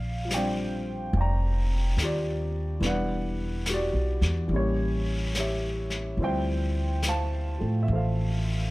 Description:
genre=jazz ballad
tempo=71 BPM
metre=4/4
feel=swing 69% on 8ths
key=unclear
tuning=A4 = 439 Hz
part: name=dark upright piano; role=accompaniment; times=0.0-8.7 s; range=E3 to Bb5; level=-30 LUFS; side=equal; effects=none
part: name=upright bass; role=bass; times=0.0-8.7 s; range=E1 to A2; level=-27 LUFS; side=equal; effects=none
part: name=vintage brush drum kit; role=drums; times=0.3-8.7 s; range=brushed snare drum, hi-hat, snare drum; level=-35 LUFS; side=left 2 dB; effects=none
room=little or no reverb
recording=none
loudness=-25 LUFS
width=side -20 dB against mid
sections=0.0-8.7 A section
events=none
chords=0.0 Bb6; 2.8 Em9; 4.5 A7b9; 6.2 Dm11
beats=0.29 1.14 1.98 | 2.82 3.66 4.50 5.34 | 6.18 7.02 7.86 8.70

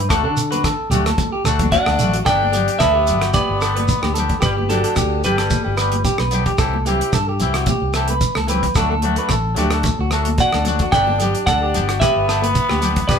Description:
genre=highlife guitar band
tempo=111 BPM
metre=4/4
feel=swing 53% on 16ths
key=G major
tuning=A4 = 442 Hz
part: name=clean electric guitar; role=arpeggios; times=0.0-13.2 s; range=F#4 to B4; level=-22 LUFS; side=right 2 dB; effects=none
part: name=fingered electric bass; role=bass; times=0.0-13.2 s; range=G1 to D3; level=-22 LUFS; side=left 1 dB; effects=none
part: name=twangy electric guitar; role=accompaniment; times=0.1-13.0 s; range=E3 to G4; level=-26 LUFS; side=left 6 dB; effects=none
part: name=damped 70s drum kit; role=drums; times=0.1-13.2 s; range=hi-hat, kick drum, rim click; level=-23 LUFS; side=equal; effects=none
part: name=shekere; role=percussion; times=0.1-13.2 s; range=none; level=-25 LUFS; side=right 3 dB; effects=none
part: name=congas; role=percussion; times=0.5-13.0 s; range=none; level=-27 LUFS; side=left 1 dB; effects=none
part: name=semi-hollow electric guitar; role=melody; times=1.7-6.3, 10.4-13.2 s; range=F#4 to G5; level=-20 LUFS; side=right 2 dB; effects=spring reverb
part: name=growling tenor saxophone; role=second line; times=1.7-6.3, 10.4-13.2 s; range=D3 to D4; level=-25 LUFS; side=left 5 dB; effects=none
room=moderate studio reverb, RT60 0.7 s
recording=band playing live in one room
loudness=-15 LUFS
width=side -7 dB against mid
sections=0.0-2.3 A section; 2.3-13.2 B section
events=none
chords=0.1 D; 2.3 G; 6.6 C; 8.8 D; 10.9 G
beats=| 0.10 0.64 1.18 1.72 | 2.26 2.81 3.35 3.89 | 4.43 4.97 5.51 6.05 | 6.59 7.14 7.68 8.22 | 8.76 9.30 9.84 10.39 | 10.93 11.47 12.01 12.55 | 13.09

